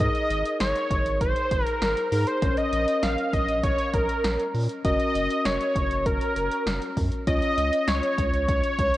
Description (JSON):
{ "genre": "synth-pop", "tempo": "99 BPM", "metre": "4/4", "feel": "straight", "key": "Db major", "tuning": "A4 = 439 Hz", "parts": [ { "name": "wide unison lead", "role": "melody", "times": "0.0-9.0 s", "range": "Bb4 to F5", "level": "-25 LUFS", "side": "equal", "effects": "analog delay" }, { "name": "bell-like tine electric piano", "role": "accompaniment", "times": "0.0-9.0 s", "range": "Db4 to Db5", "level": "-30 LUFS", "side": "left 2 dB", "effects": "none" }, { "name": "round analog bass", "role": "bass", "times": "0.0-8.9 s", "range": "Gb1 to Bb2", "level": "-29 LUFS", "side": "equal", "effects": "none" }, { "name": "punchy analog drum machine", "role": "drums", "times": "0.0-9.0 s", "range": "hi-hat, kick drum, snare drum", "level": "-28 LUFS", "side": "equal", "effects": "none" } ], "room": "moderate lush hall reverb, RT60 2.5 s", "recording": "worn, warbling old tape, cassette tape, warbly pitch drift", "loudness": "-22 LUFS", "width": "side -15 dB against mid", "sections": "0.0-9.0 A section", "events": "none", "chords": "0.0 Absus2; 2.4 Bbm; 4.8 Gb; 7.3 Db" }